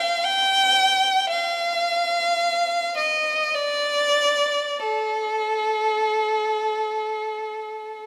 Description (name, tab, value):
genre	classical, free, expressive piece for unaccompanied violin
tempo	free time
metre	none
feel	none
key	unclear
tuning	A4 = 436 Hz
part	rich violin	solo	0.0-8.1 s	A4 to G5	-22 LUFS	equal	none
room	moderate concert hall reverb, RT60 2.0 s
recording	none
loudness	-22 LUFS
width	mono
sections	0.0-8.1 A section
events	none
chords	none